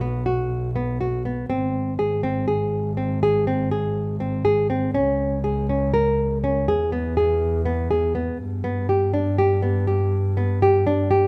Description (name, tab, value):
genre	contemporary instrumental, chamber music in an uneven meter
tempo	243 BPM (eighths)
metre	7/8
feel	straight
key	unclear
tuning	A4 = 439 Hz
part	nylon-string guitar	arpeggios	0.0-11.3 s	B3 to A#4	-24 LUFS	equal	none
part	dark double bass	bass	0.0-11.3 s	G#1 to G2	-27 LUFS	equal	none
room	light reverb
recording	close, detailed microphones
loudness	-22 LUFS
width	mono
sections	0.0-8.4 A section; 8.4-11.3 B section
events	none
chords	0.0 B5; 1.5 G#; 4.9 C#5; 6.7 E; 8.4 G